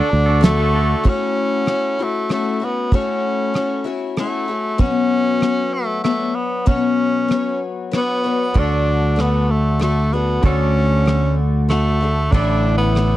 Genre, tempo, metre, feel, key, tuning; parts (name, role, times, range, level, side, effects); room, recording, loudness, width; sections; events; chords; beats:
folk rock and heartland rock; 96 BPM; 3/4; straight; A4 = 437 Hz
clear tenor saxophone; melody; 0.0-13.2 s; A3 to D4; -20 LUFS; right 1 dB
picked twelve-string acoustic guitar; accompaniment; 0.0-13.2 s; A2 to C#5; -22 LUFS; left 6 dB
twangy electric guitar; riff; 0.0-1.0, 8.5-13.2 s; A2 to A4; -26 LUFS; right 3 dB
fingered electric bass; bass; 0.1-0.9, 8.6-13.2 s; A1 to D2; -17 LUFS; right 1 dB
cloth-damped thuddy drum kit; drums; 0.4-13.1 s; hi-hat, kick drum, rim click, snare drum; -16 LUFS; right 1 dB
little or no reverb; dry, close 1970s-style studio recording; -16 LUFS; side -14 dB against mid
0.0-1.0 A section; 1.0-13.2 B section
0.0 D; 1.0 A6; 4.8 Bmadd9; 8.6 D; 12.3 Asus4
0.43 | 1.05 1.67 2.29 | 2.92 3.54 4.17 | 4.80 5.42 6.05 | 6.68 7.31 7.93 | 8.56 9.19 9.82 | 10.45 11.08 11.71 | 12.34 12.96